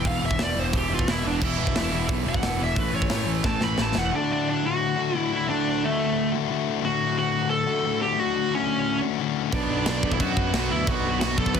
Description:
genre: punk rock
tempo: 178 BPM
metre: 4/4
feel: straight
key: D major from 4.1 s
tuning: A4 = 440 Hz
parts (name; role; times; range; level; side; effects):
- high-gain lead guitar; melody; 0.0-11.6 s; A3 to B5; -26 LUFS; right 2 dB; distortion, digital delay
- sludgy distorted guitar; riff; 0.0-11.6 s; D2 to B4; -27 LUFS; left 12 dB; overdrive
- tight distorted guitar; riff; 0.0-4.1, 9.5-11.6 s; E2 to B3; -30 LUFS; right 18 dB; distortion
- modern bright picked electric bass; bass; 0.0-4.1, 9.5-11.6 s; E1 to F#2; -29 LUFS; right 1 dB; none
- tight metal drum kit; drums; 0.0-4.0, 9.5-11.6 s; crash cymbal, hi-hat, kick drum, snare drum; -27 LUFS; right 1 dB; none
room: little or no reverb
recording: dense, heavily limited modern master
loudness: -22 LUFS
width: side -7 dB against mid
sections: 0.0-4.1 A section; 4.1-11.6 B section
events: lead electric guitar solo 0.0-4.1; drum fill 3.5-4.1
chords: 0.0 E5; 2.8 A; 4.1 D; 9.5 Bm

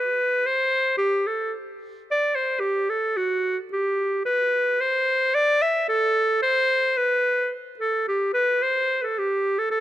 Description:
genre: alpine folk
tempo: 110 BPM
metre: 2/4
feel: rubato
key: unclear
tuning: A4 = 440 Hz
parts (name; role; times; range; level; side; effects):
- bright clarinet; solo; 0.0-9.8 s; F#4 to E5; -20 LUFS; equal; none
room: light reverb, small room ambience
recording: dry, close 1970s-style studio recording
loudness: -20 LUFS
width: side -13 dB against mid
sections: 0.0-8.1 A section; 8.1-9.8 B section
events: none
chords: none

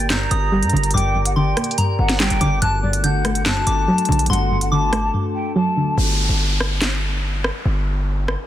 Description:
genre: hip hop, drill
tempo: 143 BPM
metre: 4/4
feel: half-time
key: unclear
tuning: A4 = 439 Hz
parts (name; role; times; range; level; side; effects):
- mellow hollow jazz flute; melody; 0.0-6.0 s; D5 to Bb5; -24 LUFS; left 2 dB; low-pass filter, tape echo
- soft synth bell; second line; 0.0-5.1 s; Bb5 to G6; -27 LUFS; equal; chorus, phaser, tape echo
- soft round pluck; accompaniment; 0.0-6.0 s; G2 to Bb3; -22 LUFS; right 1 dB; chorus, low-pass filter
- glass harmonica; sustained chords; 0.0-5.9 s; A3 to D5; -30 LUFS; left 1 dB; none
- distorted 808-style bass; bass; 0.0-8.4 s; F#1 to G2; -21 LUFS; equal; distortion
- drill drum kit; drums; 0.0-8.4 s; handclaps, hi-hat, rim click, snare drum; -23 LUFS; equal; vintage 12-bit sampler grit
- downlifter; sound effects; 6.0-8.5 s; none; -25 LUFS; equal; none
room: little or no reverb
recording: dense, heavily limited modern master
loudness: -16 LUFS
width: side -12 dB against mid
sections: 0.0-6.0 A section; 6.0-8.5 B section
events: drums muted 5.1-6.0; hi-hats muted 6.0-8.5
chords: 0.0 Gm; 2.6 D/G; 6.0 N.C.

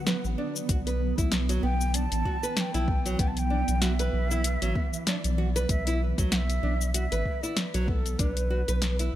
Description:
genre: organic downtempo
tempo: 96 BPM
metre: 4/4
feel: swing 56% on 16ths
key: B minor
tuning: A4 = 440 Hz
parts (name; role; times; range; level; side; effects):
- breathy mellow ney; melody; 0.0-9.2 s; A4 to A5; -34 LUFS; equal; digital delay
- granular cloud pad; sustained chords; 0.0-9.2 s; D3 to F#4; -35 LUFS; right 3 dB; built-in reverb, sidechain pumping
- nylon-string guitar; arpeggios; 0.1-9.1 s; F#3 to B4; -34 LUFS; equal; digital delay
- deep house drum kit; drums; 0.1-9.1 s; cabasa, hi-hat, snare drum; -30 LUFS; left 1 dB; overdrive
- round analog bass; bass; 0.2-9.2 s; A1 to B1; -27 LUFS; equal; sidechain pumping
- electronic kick drum; drums; 0.7-8.3 s; none; -29 LUFS; equal; overdrive
room: little or no reverb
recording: none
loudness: -25 LUFS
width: side -13 dB against mid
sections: 0.0-9.2 A section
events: none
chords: 0.0 Bm

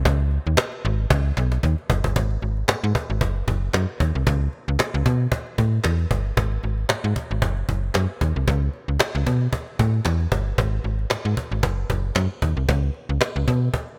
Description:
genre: early-eighties boogie funk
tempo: 114 BPM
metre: 4/4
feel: swing 56% on 16ths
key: unclear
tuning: A4 = 442 Hz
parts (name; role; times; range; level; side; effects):
- slap-like FM bass; bass; 0.0-13.7 s; F#1 to B2; -24 LUFS; equal; none
- cajon; drums; 0.1-13.9 s; none; -27 LUFS; equal; none
room: light reverb, studio ambience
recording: bright 1980s-style digital production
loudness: -23 LUFS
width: mono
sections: 0.0-2.2 A section; 2.2-14.0 B section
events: drum fill 1.1-2.2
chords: none

